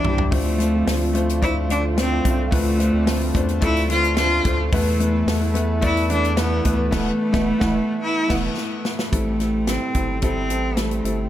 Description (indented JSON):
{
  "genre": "piano-driven pop",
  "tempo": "109 BPM",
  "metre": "4/4",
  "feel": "straight",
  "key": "A minor",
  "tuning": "A4 = 435 Hz",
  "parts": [
    { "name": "clear cello", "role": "melody", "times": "0.0-11.2 s", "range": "A3 to F4", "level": "-23 LUFS", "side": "equal", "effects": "none" },
    { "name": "mellow French horn section", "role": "second line", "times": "0.0-8.4 s", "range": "B2 to F4", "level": "-32 LUFS", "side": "right 2 dB", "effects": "tape echo" },
    { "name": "warm grand piano", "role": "accompaniment", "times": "0.0-11.3 s", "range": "A2 to D5", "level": "-26 LUFS", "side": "left 4 dB", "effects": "none" },
    { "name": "warm analog pad", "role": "sustained chords", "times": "0.0-11.3 s", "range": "E4 to A5", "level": "-36 LUFS", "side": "right 1 dB", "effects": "chorus" },
    { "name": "fingerpicked steel-string acoustic guitar", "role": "riff", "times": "0.0-8.5 s", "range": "E2 to F4", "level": "-31 LUFS", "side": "right 7 dB", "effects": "none" },
    { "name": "round analog bass", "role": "bass", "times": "0.0-11.3 s", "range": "E1 to E2", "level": "-24 LUFS", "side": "equal", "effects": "none" },
    { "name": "natural country drum kit", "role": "drums", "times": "0.0-11.2 s", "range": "crash cymbal, hi-hat, kick drum, snare drum, toms", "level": "-25 LUFS", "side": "equal", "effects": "none" }
  ],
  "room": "studio ambience",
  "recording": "none",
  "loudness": "-18 LUFS",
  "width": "side -12 dB against mid",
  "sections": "0.0-9.1 A section; 9.1-11.3 B section",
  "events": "drum fill 0.0-0.3, 8.6-9.1; band accent 6.9-9.1",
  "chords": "0.3 Dm7; 4.7 Esus4; 9.1 Am7"
}